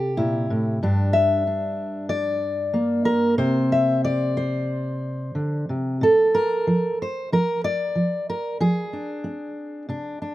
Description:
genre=folk, solo fingerstyle acoustic guitar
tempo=93 BPM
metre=4/4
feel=rubato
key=C mixolydian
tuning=A4 = 442 Hz
part: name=fingerpicked steel-string acoustic guitar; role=solo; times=0.0-10.3 s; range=G2 to E5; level=-20 LUFS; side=equal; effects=none
room=little or no reverb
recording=recorded outdoors, with no room sound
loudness=-20 LUFS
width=side -15 dB against mid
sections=0.0-6.0 A section; 6.0-10.3 B section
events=none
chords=0.0 C; 0.8 Gm; 3.4 Csus2; 6.0 Bbmaj7; 8.6 Fm6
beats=0.18 | 0.81 1.45 2.09 2.73 | 3.37 4.03 4.68 5.36 | 6.03 6.68 7.33 7.97 | 8.61 9.25 9.88

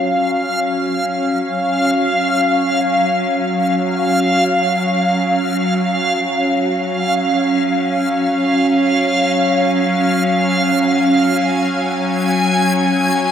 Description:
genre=ambient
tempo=free time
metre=none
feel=none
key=unclear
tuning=A4 = 438 Hz
part: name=bowed-like drone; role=drone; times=0.0-13.3 s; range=Gb3 to Db4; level=-17 LUFS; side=equal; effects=built-in reverb, phaser
part: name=backwards swelling texture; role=texture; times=0.0-13.3 s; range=F5 to Ab5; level=-17 LUFS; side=equal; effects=built-in reverb
room=wet huge ambient reverb, RT60 7.7 s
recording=none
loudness=-14 LUFS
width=side -8 dB against mid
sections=0.0-13.3 A section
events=none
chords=0.0 Gb5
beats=free time

